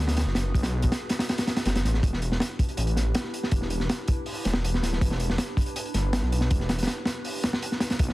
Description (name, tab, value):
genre	drum and bass, jungle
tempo	161 BPM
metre	4/4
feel	straight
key	E minor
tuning	A4 = 440 Hz
part	warbly tape-like pad	sustained chords	0.0-8.1 s	D4 to B4	-36 LUFS	equal	chorus, built-in reverb
part	detuned saw bass	bass	0.0-8.1 s	D1 to D2	-26 LUFS	equal	none
part	crunchy breakbeat drum kit	drums	0.1-8.1 s	hi-hat, kick drum, snare drum	-26 LUFS	equal	none
room	little or no reverb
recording	dense, heavily limited modern master, vinyl crackle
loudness	-24 LUFS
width	side -18 dB against mid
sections	0.0-8.1 A section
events	none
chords	0.0 Bm; 2.0 Em7